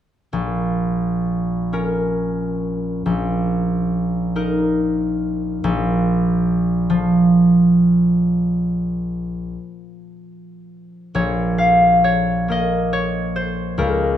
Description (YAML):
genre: classical, solo harp piece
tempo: 37-48 BPM (dotted quarters)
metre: 6/8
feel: rubato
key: Bb minor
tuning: A4 = 440 Hz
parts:
  - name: concert harp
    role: solo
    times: 0.3-14.2 s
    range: Bb1 to F5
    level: -17 LUFS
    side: equal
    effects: none
room: moderate recital hall reverb, RT60 1.4 s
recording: dark, warm production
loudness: -16 LUFS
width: side -10 dB against mid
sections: 0.3-11.1 A section; 11.1-14.2 B section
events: none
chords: 0.3 Bbm; 3.0 Eb5/Bb; 5.6 Bb5